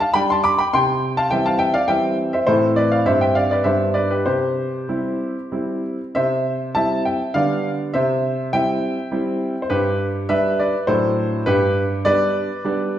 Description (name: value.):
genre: classical-period piano sonatina.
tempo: 102 BPM.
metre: 3/4.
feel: rubato.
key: C major.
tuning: A4 = 440 Hz.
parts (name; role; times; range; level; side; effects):
clear concert grand piano; solo; 0.0-13.0 s; G2 to D6; -17 LUFS; equal; none.
room: wet recital hall reverb, RT60 1.4 s.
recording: recorded in a church or concert hall.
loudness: -17 LUFS.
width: side -11 dB against mid.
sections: 0.0-6.2 A section; 6.2-13.0 B section.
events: none.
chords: 0.0 G; 0.7 C; 2.5 Am; 3.1 C/G; 3.7 G; 4.3 C; 7.3 G7/D; 7.9 C; 9.7 G; 10.9 D7/A; 11.5 G.